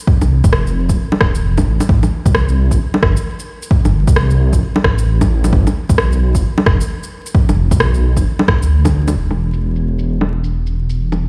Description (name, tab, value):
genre	future garage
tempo	132 BPM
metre	4/4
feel	swing 62% on 16ths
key	unclear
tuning	A4 = 439 Hz
part	electronic kick drum	drums	0.1-8.9 s	none	-18 LUFS	equal	overdrive, studio ambience
part	swelling detuned saw bass	bass	0.2-11.3 s	D1 to D2	-17 LUFS	equal	sidechain pumping
part	electronic bongos, shaker and rim click	drums	0.2-11.2 s	none	-22 LUFS	equal	overdrive, low-pass filter on perc, studio ambience, low-pass filter on snare
room	little or no reverb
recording	played on a big sound system in a bare room, stone room reverb, vinyl crackle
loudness	-14 LUFS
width	mono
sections	0.0-9.2 A section; 9.2-11.3 B section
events	none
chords	none